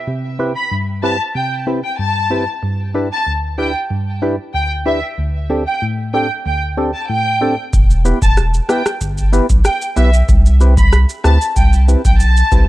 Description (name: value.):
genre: dancehall.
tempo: 94 BPM.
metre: 4/4.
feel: straight.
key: E minor.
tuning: A4 = 440 Hz.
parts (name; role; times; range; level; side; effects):
percussive organ stab; accompaniment; 0.1-12.7 s; D2 to B4; -19 LUFS; equal; chorus, sidechain pumping.
warm studio violin section; melody; 0.6-12.7 s; E5 to B5; -20 LUFS; equal; tape echo.
warm sub bass; bass; 7.7-12.7 s; E1 to D2; -12 LUFS; equal; none.
booming analog drum machine; drums; 7.7-12.7 s; kick drum, rim click, shaker; -14 LUFS; equal; none.
room: little or no reverb.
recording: dry, gritty hardware recording, cassette tape.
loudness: -13 LUFS.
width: side -16 dB against mid.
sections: 0.0-7.7 A section; 7.7-12.7 B section.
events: none.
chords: 0.1 Cmaj7; 2.6 G6; 5.2 D7sus4; 7.7 Em; 10.3 Cmaj7.